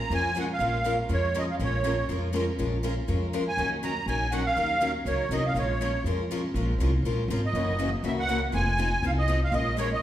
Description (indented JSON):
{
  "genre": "acoustic string swing (jazz manouche)",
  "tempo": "242 BPM",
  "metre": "4/4",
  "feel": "swing 54% on 8ths",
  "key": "Bb minor",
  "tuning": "A4 = 438 Hz",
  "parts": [
    { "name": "musette accordion", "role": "melody", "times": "0.0-10.0 s", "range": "Db5 to Bb5", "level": "-28 LUFS", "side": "right 2 dB", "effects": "none" },
    { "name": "picked steel-string acoustic guitar", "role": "accompaniment", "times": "0.1-9.9 s", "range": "Db3 to Bb4", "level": "-32 LUFS", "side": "left 4 dB", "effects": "none" },
    { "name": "picked steel-string acoustic guitar", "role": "accompaniment", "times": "0.1-9.9 s", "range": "Eb3 to Bb4", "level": "-36 LUFS", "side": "right 4 dB", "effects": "none" },
    { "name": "upright bass", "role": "bass", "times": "0.1-9.9 s", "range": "F1 to F2", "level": "-28 LUFS", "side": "equal", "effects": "none" }
  ],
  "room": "wet recital hall reverb, RT60 1.4 s",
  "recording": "recorded in a church or concert hall",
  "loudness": "-24 LUFS",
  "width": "side -12 dB against mid",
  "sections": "0.0-10.0 A section",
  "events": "none",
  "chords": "0.0 Bbm7; 3.6 Ebm7; 5.6 Bbm7; 7.5 Gb7; 8.5 F7#9; 9.5 Bbm7",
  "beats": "0.11 0.36 | 0.60 0.85 1.10 1.35 | 1.59 1.84 2.09 2.34 | 2.58 2.83 3.08 3.33 | 3.57 3.82 4.07 4.32 | 4.56 4.81 5.06 5.31 | 5.55 5.80 6.05 6.30 | 6.54 6.79 7.04 7.29 | 7.54 7.78 8.03 8.28 | 8.53 8.77 9.02 9.27 | 9.52 9.77 10.01"
}